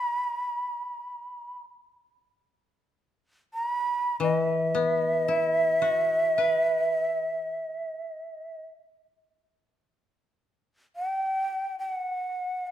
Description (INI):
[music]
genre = japanese traditional, Japanese chamber music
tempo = free time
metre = none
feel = none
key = E hirajoshi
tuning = A4 = 435 Hz
[part]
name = breathy shakuhachi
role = melody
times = 0.0-12.7 s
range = E5 to B5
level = -26 LUFS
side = right 1 dB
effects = none
[part]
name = koto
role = accompaniment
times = 4.2-8.6 s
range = E3 to B4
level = -28 LUFS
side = left 4 dB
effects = none
[sound]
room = moderate recital hall reverb, RT60 1.6 s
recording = none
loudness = -25 LUFS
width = side -11 dB against mid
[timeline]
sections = 0.0-9.8 A section; 9.8-12.7 A section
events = none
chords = none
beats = free time